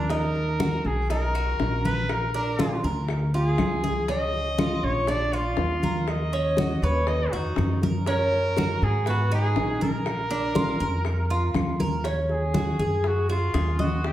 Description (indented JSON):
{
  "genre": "latin, Cuban son and guajira",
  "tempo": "120 BPM",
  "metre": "4/4",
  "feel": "straight",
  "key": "Eb minor",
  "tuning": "A4 = 440 Hz",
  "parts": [
    { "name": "clear trumpet", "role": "melody", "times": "0.0-14.1 s", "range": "D#4 to D#5", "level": "-29 LUFS", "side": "equal", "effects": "tape echo" },
    { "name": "Cuban tres", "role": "arpeggios", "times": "0.0-14.1 s", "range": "Cb4 to Eb5", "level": "-29 LUFS", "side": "right 2 dB", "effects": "none" },
    { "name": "upright bass", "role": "bass", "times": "0.0-14.1 s", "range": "Bb1 to Ab2", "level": "-27 LUFS", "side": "equal", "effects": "none" },
    { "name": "bongos", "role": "percussion", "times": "0.1-14.1 s", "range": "none", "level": "-33 LUFS", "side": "left 3 dB", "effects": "none" },
    { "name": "congas", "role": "percussion", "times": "0.1-14.1 s", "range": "none", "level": "-30 LUFS", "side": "left 1 dB", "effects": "none" },
    { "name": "claves", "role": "percussion", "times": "0.6-11.8 s", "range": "none", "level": "-46 LUFS", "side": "left 6 dB", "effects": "none" }
  ],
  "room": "wet large studio reverb, RT60 1.3 s",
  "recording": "heard from further back in the room",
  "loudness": "-22 LUFS",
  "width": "side -13 dB against mid",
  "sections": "0.0-12.1 A section; 12.1-14.1 B section",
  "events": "trumpet solo 12.1-14.1",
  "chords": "0.1 Ebm; 1.1 B; 2.1 Bb; 4.1 Dbadd9; 5.1 Bb; 6.1 Ebm7; 7.1 B/D#; 8.1 Gb; 9.1 Abm; 10.1 Bb; 12.1 Ebm7; 13.1 Gbsus2",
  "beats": "| 0.10 0.60 1.10 1.60 | 2.10 2.59 3.09 3.59 | 4.09 4.59 5.08 5.58 | 6.08 6.58 7.08 7.58 | 8.07 8.57 9.07 9.57 | 10.06 10.56 11.06 11.56 | 12.05 12.55 13.05 13.55 | 14.05"
}